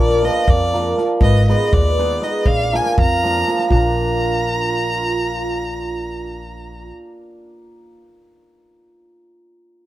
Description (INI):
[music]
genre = balkan folk, Balkan wedding band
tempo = 241 BPM (eighths)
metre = 5/8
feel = straight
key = unclear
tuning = A4 = 440 Hz
[part]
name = rich violin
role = melody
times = 0.0-6.9 s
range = D5 to Bb5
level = -22 LUFS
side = equal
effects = plate reverb
[part]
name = warm velvety synth lead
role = second line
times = 0.0-6.9 s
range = F4 to F5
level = -23 LUFS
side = right 1 dB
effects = chorus
[part]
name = hammered dulcimer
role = accompaniment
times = 0.0-8.0 s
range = F3 to Cb5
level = -22 LUFS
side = right 2 dB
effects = none
[part]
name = upright bass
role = bass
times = 0.0-6.9 s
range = Ab1 to F2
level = -21 LUFS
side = equal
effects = none
[part]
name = natural country drum kit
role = percussion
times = 0.1-4.0 s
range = kick drum, snare drum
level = -18 LUFS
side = equal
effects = none
[sound]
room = light reverb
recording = dark, warm production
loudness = -15 LUFS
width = side -14 dB against mid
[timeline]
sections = 0.0-3.7 A section; 3.7-6.2 B section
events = none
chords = 0.0 Bb; 1.2 Abm; 2.5 Bb